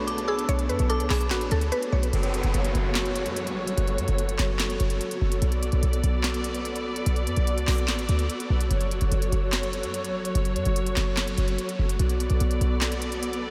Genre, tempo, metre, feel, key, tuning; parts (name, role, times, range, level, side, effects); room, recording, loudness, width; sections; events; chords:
hip hop, trap; 146 BPM; 4/4; half-time; F# minor; A4 = 441 Hz
mallet-like synth pluck; melody; 0.0-2.1 s; F#4 to C#5; -34 LUFS; equal; chorus, tape echo
metallic FM bell; second line; 0.0-1.7 s; B5 to E6; -39 LUFS; equal; chorus, tape echo
dark symphonic string section; sustained chords; 0.0-13.5 s; F#3 to D5; -32 LUFS; equal
short 808-style bass; bass; 0.0-13.5 s; F#1 to F#2; -27 LUFS; equal
trap drum kit; drums; 0.1-13.4 s; handclaps, hi-hat, snare drum; -35 LUFS; equal
downlifter; sound effects; 2.1-5.4 s; -38 LUFS; equal
wet huge ambient reverb, RT60 8.3 s; dreamy mix soaked in reverb; -26 LUFS; mono
0.0-2.1 A section; 2.1-13.5 B section
0.0 Bm7; 2.1 F#m; 5.4 Bm7; 8.7 F#m; 12.0 Bm7